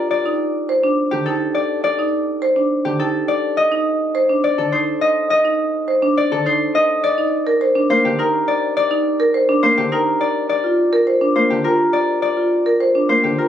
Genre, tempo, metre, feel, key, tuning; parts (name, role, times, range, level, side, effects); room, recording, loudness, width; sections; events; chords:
classical, minimalist pattern music; 104 BPM; 3/4; straight; G minor; A4 = 441 Hz
concert harp; melody; 0.0-13.5 s; G4 to Eb5; -18 LUFS; left 3 dB
marimba with medium hard mallets; arpeggios; 0.3-13.5 s; D4 to C5; -18 LUFS; right 2 dB
warm baby grand piano; accompaniment; 1.1-13.4 s; D3 to Bb3; -22 LUFS; left 1 dB
little or no reverb; recorded on a phone in the room, studio ambience; -15 LUFS; side -10 dB against mid
0.0-13.5 A section
0.1 Am7b5; 7.0 Ebmaj7; 10.5 Gm7